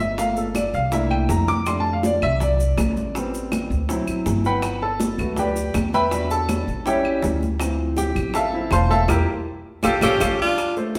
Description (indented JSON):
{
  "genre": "Afro-Cuban jazz",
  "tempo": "162 BPM",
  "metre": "4/4",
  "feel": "straight",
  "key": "D minor",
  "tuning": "A4 = 440 Hz",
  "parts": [
    { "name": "warm concert grand piano", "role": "accompaniment", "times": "0.0-11.0 s", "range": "E3 to D6", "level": "-24 LUFS", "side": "equal", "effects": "none" },
    { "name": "upright bass", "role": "bass", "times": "0.0-10.3 s", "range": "E1 to F2", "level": "-27 LUFS", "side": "equal", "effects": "none" },
    { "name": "bongos", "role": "percussion", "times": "0.0-11.0 s", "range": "none", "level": "-33 LUFS", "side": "equal", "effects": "none" },
    { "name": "maracas", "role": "percussion", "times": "0.0-11.0 s", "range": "none", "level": "-41 LUFS", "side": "equal", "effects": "none" },
    { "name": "congas", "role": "percussion", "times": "0.2-11.0 s", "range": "none", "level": "-32 LUFS", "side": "equal", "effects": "none" },
    { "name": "claves", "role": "percussion", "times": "0.6-10.8 s", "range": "none", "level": "-36 LUFS", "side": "equal", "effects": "none" },
    { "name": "breathy tenor saxophone", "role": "melody", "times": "10.0-10.8 s", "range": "E#4 to G4", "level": "-25 LUFS", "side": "equal", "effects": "none" },
    { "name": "edgy tenor saxophone", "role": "second line", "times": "10.0-10.8 s", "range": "C#4 to D4", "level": "-30 LUFS", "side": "equal", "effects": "none" }
  ],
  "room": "wet large studio reverb, RT60 1.3 s",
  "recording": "band playing live in one room",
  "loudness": "-21 LUFS",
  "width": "mono",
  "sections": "0.0-10.6 A section",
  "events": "grand piano solo 0.0-10.6; drum fill 9.1-10.6; band accent 9.1-10.6",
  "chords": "0.2 Gm7; 0.9 C13; 1.7 F6; 3.2 Am9; 3.9 D7; 4.6 Gmaj7; 6.1 Em7; 6.9 A7; 7.6 Dm9; 9.1 Edim; 9.8 Aaug7",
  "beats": "| 0.18 0.56 0.93 1.30 | 1.67 2.04 2.41 2.78 | 3.15 3.52 3.89 4.26 | 4.64 5.01 5.38 5.75 | 6.12 6.49 6.87 7.24 | 7.61 7.98 8.35 8.72 | 9.09 9.47 9.84 10.21 | 10.58 10.95"
}